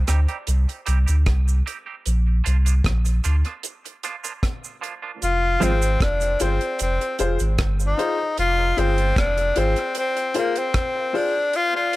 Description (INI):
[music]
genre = dub reggae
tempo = 76 BPM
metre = 4/4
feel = straight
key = F dorian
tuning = A4 = 439 Hz
[part]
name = warm sub bass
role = bass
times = 0.0-9.8 s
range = F1 to D2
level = -20 LUFS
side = equal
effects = none
[part]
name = semi-hollow electric guitar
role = accompaniment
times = 0.1-5.7 s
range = F3 to G4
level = -31 LUFS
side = right 6 dB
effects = high-pass filter, dub echo
[part]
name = deep reggae drum kit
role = drums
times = 0.1-12.0 s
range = hi-hat, kick drum, rim click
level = -26 LUFS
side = equal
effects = none
[part]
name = cabasa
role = percussion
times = 0.1-8.0 s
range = none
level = -33 LUFS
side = right 6 dB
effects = high-pass filter on perc
[part]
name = breathy tenor saxophone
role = melody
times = 5.2-12.0 s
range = Bb3 to F4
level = -22 LUFS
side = left 2 dB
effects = dub echo
[part]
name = warm upright piano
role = stabs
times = 5.6-11.3 s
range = F4 to C5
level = -28 LUFS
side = left 4 dB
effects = dub echo
[sound]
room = light reverb, studio reverb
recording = none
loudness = -19 LUFS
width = side -18 dB against mid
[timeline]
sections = 0.0-12.0 A section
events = break 0.0-5.2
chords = 0.0 Cm; 2.1 Bb; 5.2 Fm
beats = 0.47 1.26 | 2.06 2.85 3.64 4.43 | 5.22 6.01 6.80 7.59 | 8.38 9.17 9.96 10.75 | 11.54